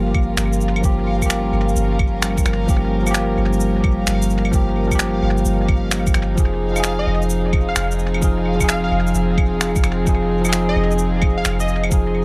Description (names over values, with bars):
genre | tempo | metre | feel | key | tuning
future garage | 130 BPM | 4/4 | swing 66% on 16ths | F minor | A4 = 440 Hz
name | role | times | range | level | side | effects
bell-like tine electric piano | accompaniment | 0.0-12.2 s | F3 to Ab4 | -24 LUFS | equal | sidechain pumping, dub echo
rich chamber string section | sustained chords | 0.0-12.2 s | F3 to Bb4 | -28 LUFS | equal | vintage 12-bit sampler grit, sidechain pumping
soft 808-style bass | bass | 0.0-12.2 s | F1 to G1 | -24 LUFS | equal | sidechain pumping
backwards swelling texture | texture | 0.0-12.2 s | F5 | -35 LUFS | equal | built-in reverb
electronic claves, finger snaps and shaker | drums | 0.1-12.0 s | none | -27 LUFS | equal | tape echo
electronic kick drum | drums | 0.1-12.0 s | none | -20 LUFS | equal | none
plucky unison lead | melody | 7.0-11.8 s | Eb5 to F5 | -30 LUFS | equal | cassette tape, dub echo
room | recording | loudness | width
light reverb | echo-heavy mix | -18 LUFS | mono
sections
0.0-12.2 A section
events
none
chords
0.0 Gm7b5; 6.4 Fm7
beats
0.38 | 0.84 1.30 1.76 2.22 | 2.69 3.15 3.61 4.07 | 4.53 4.99 5.46 5.92 | 6.38 6.84 7.30 7.76 | 8.22 8.69 9.15 9.61 | 10.07 10.53 10.99 11.46 | 11.92